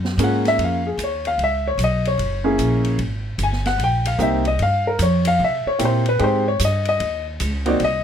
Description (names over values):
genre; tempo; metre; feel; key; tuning
jazz piano trio; 150 BPM; 4/4; swing 65% on 8ths; unclear; A4 = 440 Hz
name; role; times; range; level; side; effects
upright bass; bass; 0.0-8.0 s; Gb1 to C3; -22 LUFS; right 1 dB; none
open jazz drum kit; drums; 0.0-7.9 s; hi-hat, ride cymbal, snare drum; -31 LUFS; equal; none
warm concert grand piano; melody; 0.2-8.0 s; Ab3 to Ab5; -19 LUFS; left 1 dB; none
room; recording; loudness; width
light reverb; none; -17 LUFS; side -8 dB against mid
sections
0.0-8.0 A section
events
grand piano solo 0.0-8.0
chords
0.0 Gbmaj9; 1.4 Badd9; 2.2 Gb9; 3.0 Abmaj9; 4.6 Bbm6 (rootless); 5.4 C7; 6.2 Abmaj7